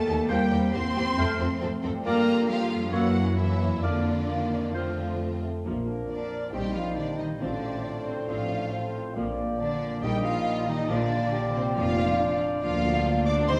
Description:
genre	classical, dramatic, fast romantic movement for symphony orchestra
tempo	137 BPM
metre	4/4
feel	straight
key	Bb major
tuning	A4 = 440 Hz
part	warm symphonic violin section	melody	0.0-13.6 s	C5 to D6	-38 LUFS	equal	none
part	bright clarinet	second line	0.0-13.6 s	C4 to D5	-38 LUFS	equal	none
part	dark French horn section	sustained chords	0.0-13.6 s	G3 to F4	-36 LUFS	equal	none
part	concert harp	arpeggios	0.0-13.6 s	F2 to D5	-38 LUFS	equal	none
part	rich symphonic cello section	bass	0.0-13.6 s	C3 to D4	-35 LUFS	equal	none
part	warm symphonic violin section	second line	0.1-13.6 s	C4 to D5	-40 LUFS	equal	none
part	warm symphonic viola section	accompaniment	0.1-13.6 s	D3 to C4	-36 LUFS	equal	none
part	clear symphonic double bass section	bass	0.1-13.6 s	F1 to G2	-35 LUFS	equal	none
part	clear oboe	second line	0.3-4.9 s	C5 to D5	-42 LUFS	equal	none
part	large flute ensemble	second line	0.3-13.6 s	C5 to G6	-39 LUFS	equal	none
part	dark bassoon	accompaniment	0.3-13.6 s	F3 to G4	-38 LUFS	equal	none
part	clear trumpet section	stabs	5.6-13.6 s	Bb4 to Eb5	-36 LUFS	equal	none
part	clear trombone section	sustained chords	5.7-13.6 s	A2 to Bb3	-41 LUFS	equal	none
part	mellow tuba	bass	5.7-13.6 s	F1 to Eb2	-38 LUFS	equal	none
room	wet recital hall reverb, RT60 1.4 s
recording	heard from further back in the room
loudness	-27 LUFS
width	mono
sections	0.0-5.7 A section; 5.7-13.6 B section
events	none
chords	0.3 C7/E; 1.2 F; 2.1 Gm7; 2.9 Gb7; 3.8 Bb/F; 4.7 F; 5.7 Bb; 6.5 Cm7/Bb; 7.4 F/A; 9.2 Bb; 10.0 Eb/Bb; 10.9 Bb; 12.6 Bb/D

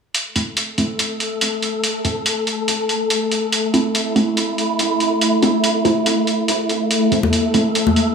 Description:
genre	deep dubstep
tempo	142 BPM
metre	4/4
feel	swing 55% on 16ths, half-time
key	A minor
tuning	A4 = 440 Hz
part	electronic hi-hat	drums	0.1-8.1 s	none	-21 LUFS	right 1 dB	studio reverb
part	wind-like tuned noise texture	texture	0.9-8.1 s	A3 to A4	-19 LUFS	equal	built-in reverb
part	filtered dub chord stab	stabs	0.4-7.6 s	A3 to E4	-21 LUFS	right 2 dB	phaser, lush chorus, cassette tape, dub echo
part	congas	percussion	7.2-7.9 s	none	-17 LUFS	left 3 dB	dub echo
room	moderate spring reverb, RT60 1.4 s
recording	small room ambience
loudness	-16 LUFS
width	side -6 dB against mid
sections	0.1-8.1 A section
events	none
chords	0.1 A5

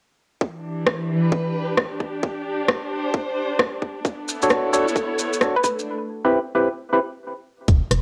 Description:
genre	UK garage, two-step garage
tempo	132 BPM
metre	4/4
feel	swing 67% on 16ths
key	E minor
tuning	A4 = 442 Hz
part	electronic kick drum	drums	0.4-7.8 s	none	-24 LUFS	equal	overdrive, high-pass filter on kick, cassette tape
part	warm chamber string section	texture	0.4-5.9 s	E3 to C#5	-28 LUFS	equal	sidechain pumping, cassette tape
part	garage drum kit	drums	0.9-8.0 s	hi-hat, rim click	-22 LUFS	equal	overdrive, cassette tape
part	maracas	percussion	4.1-5.9 s	none	-31 LUFS	equal	none
part	percussive organ stab	stabs	4.4-7.0 s	C4 to C#5	-23 LUFS	equal	chorus, cassette tape, analog delay
part	hollow square pluck	melody	5.6-5.7 s	B4	-26 LUFS	equal	chorus, analog delay
part	organ-like FM bass	bass	7.7-8.0 s	E1	-23 LUFS	equal	none
room	moderate studio reverb, RT60 0.7 s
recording	home recording on cassette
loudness	-23 LUFS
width	mono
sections	0.4-7.7 A section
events	break 5.9-7.7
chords	0.4 Em7; 2.0 D7sus4; 4.0 Bm7; 5.6 Am7

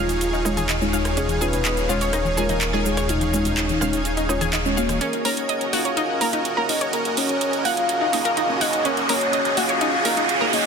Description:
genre	progressive house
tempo	125 BPM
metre	4/4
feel	straight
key	Eb minor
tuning	A4 = 439 Hz
part	soft octave-layered synth lead	melody	0.0-10.7 s	Eb4 to F5	-25 LUFS	left 1 dB	chorus, tremolo, ping-pong delay
part	supersaw pad	sustained chords	0.0-10.7 s	Db4 to F5	-27 LUFS	right 2 dB	none
part	deep mellow chord stab	stabs	0.0-10.7 s	Ab3 to Db5	-28 LUFS	left 2 dB	chorus, digital delay
part	dark detuned saw bass	bass	0.0-5.0 s	Eb1	-26 LUFS	equal	none
part	twinkling granular texture	texture	0.0-10.7 s	Ab4 to Ab5	-33 LUFS	right 1 dB	built-in reverb
part	house drum kit	drums	0.1-10.6 s	cabasa, handclaps, hi-hat, rim click	-26 LUFS	right 3 dB	none
part	analog pluck	arpeggios	0.3-10.5 s	Db4 to Gb5	-27 LUFS	equal	chorus, digital delay
part	congas and bongos	percussion	0.6-5.0 s	none	-32 LUFS	left 4 dB	none
part	riser	sound effects	6.4-10.7 s	none	-26 LUFS	right 1 dB	none
room	moderate lush hall reverb, RT60 2.6 s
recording	dense, heavily limited modern master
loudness	-19 LUFS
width	side -6 dB against mid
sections	0.0-5.0 A section; 5.0-10.7 B section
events	build-up 5.0-10.7; filter sweep on soft synth lead 5.0-10.7; riser 6.4-10.7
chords	0.0 Eb7(no3); 5.0 Ebm7

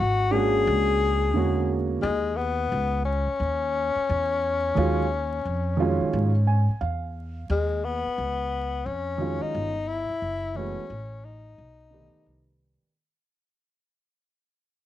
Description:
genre	hip hop, jazz-hop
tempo	88 BPM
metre	4/4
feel	swing 62% on 16ths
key	Eb minor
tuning	A4 = 440 Hz
part	breathy tenor saxophone	melody	0.0-12.6 s	Ab3 to Ab4	-26 LUFS	left 4 dB	none
part	upright bass	bass	0.0-12.8 s	Gb1 to Ab2	-28 LUFS	equal	none
part	dark concert grand piano	accompaniment	0.3-12.9 s	D3 to Ab5	-27 LUFS	right 5 dB	cassette tape
room	light reverb, small room ambience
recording	home recording on cassette, vinyl crackle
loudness	-23 LUFS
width	side -12 dB against mid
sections	0.0-7.5 A section; 7.5-12.9 B section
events	grand piano fill 6.1-7.5; fade-out 7.5-12.9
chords	0.0 Bb7alt; 2.0 Ebm11; 10.2 Gbm11; 11.6 B7alt

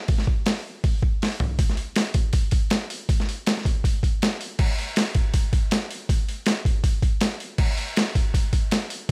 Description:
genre	metal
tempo	160 BPM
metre	4/4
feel	straight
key	none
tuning	none
part	boom bap sampler-style drum kit	drums	0.1-9.1 s	crash cymbal, hi-hat, kick drum, snare drum, toms	-24 LUFS	equal	none
room	digital ambience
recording	none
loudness	-24 LUFS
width	mono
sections	0.1-1.6 A section; 1.6-9.1 B section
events	drum fill 1.2-1.6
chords	none

